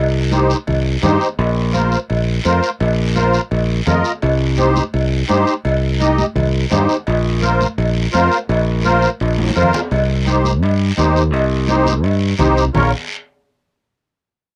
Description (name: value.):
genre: latin, cumbia.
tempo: 169 BPM.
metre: 4/4.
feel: straight.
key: unclear.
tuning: A4 = 440 Hz.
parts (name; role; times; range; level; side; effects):
fingered electric bass; bass; 0.0-12.9 s; Bb1 to G2; -18 LUFS; equal; none.
musette accordion; accompaniment; 0.3-12.9 s; Eb4 to Eb5; -18 LUFS; equal; none.
congas; percussion; 0.3-12.8 s; none; -27 LUFS; equal; none.
cowbell and timbales; percussion; 0.3-12.8 s; none; -27 LUFS; equal; none.
guiro; percussion; 0.3-12.8 s; none; -31 LUFS; equal; none.
room: moderate booth ambience, RT60 0.2 s.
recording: home recording on cassette.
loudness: -16 LUFS.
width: mono.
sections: 0.0-9.9 A section; 9.9-12.8 B section; 12.8-14.2 C section.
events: drum fill 9.4-9.9.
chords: 0.0 Cm; 1.4 Bbsus2; 4.2 Cm; 7.1 Bbsus2; 9.9 Cm; 12.8 Bbm.